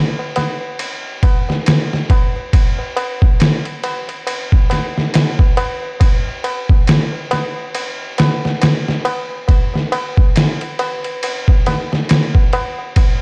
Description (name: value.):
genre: trip hop.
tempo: 69 BPM.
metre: 4/4.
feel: swing 58% on 16ths.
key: none.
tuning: none.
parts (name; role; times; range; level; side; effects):
tabla; percussion; 0.2-13.2 s; none; -26 LUFS; equal; none.
trip hop sampler-style drum kit; drums; 0.4-13.2 s; kick drum, ride cymbal, snare drum; -17 LUFS; equal; overdrive, studio reverb.
room: digital ambience.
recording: dark, warm production.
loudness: -16 LUFS.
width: mono.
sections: 0.0-13.2 A section.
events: none.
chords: none.